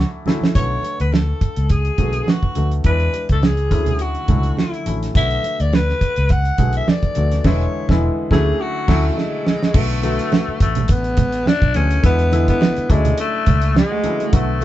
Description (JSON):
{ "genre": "lush 1970s-style soul", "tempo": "104 BPM", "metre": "4/4", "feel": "swing 54% on 16ths", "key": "B dorian", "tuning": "A4 = 440 Hz", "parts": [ { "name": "growling alto saxophone", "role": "melody", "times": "0.0-14.6 s", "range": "G#3 to F#5", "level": "-22 LUFS", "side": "left 2 dB", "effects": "none" }, { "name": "warm baby grand piano", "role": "accompaniment", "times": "0.0-14.6 s", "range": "D3 to G#4", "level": "-25 LUFS", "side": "left 2 dB", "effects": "none" }, { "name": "vintage muted fingered electric bass", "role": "bass", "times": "0.0-14.6 s", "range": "E1 to E2", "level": "-19 LUFS", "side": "equal", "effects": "none" }, { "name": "damped 70s drum kit", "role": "drums", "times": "0.3-14.6 s", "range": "crash cymbal, hi-hat, kick drum, snare drum", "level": "-17 LUFS", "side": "right 1 dB", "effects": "none" }, { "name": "congas", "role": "percussion", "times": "0.3-14.6 s", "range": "none", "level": "-26 LUFS", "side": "right 4 dB", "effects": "none" }, { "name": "mellow electric guitar", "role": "riff", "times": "13.9-14.5 s", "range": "A3 to G#4", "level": "-26 LUFS", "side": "right 7 dB", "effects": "spring reverb" } ], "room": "moderate studio reverb, RT60 0.7 s", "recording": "band playing live in one room, nothing above 7.9 kHz", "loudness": "-15 LUFS", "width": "side -14 dB against mid", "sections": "0.6-9.7 A section; 9.7-14.6 B section", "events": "drum fill 0.0-0.6, 9.2-9.7; band accent 7.4-9.7", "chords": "0.0 Dmaj9; 0.6 Bm7; 2.8 E7; 3.7 Dmaj9; 5.1 Bm7; 7.4 E7; 8.3 Dmaj9; 9.7 Bm7; 12.0 E7; 12.9 Dmaj9" }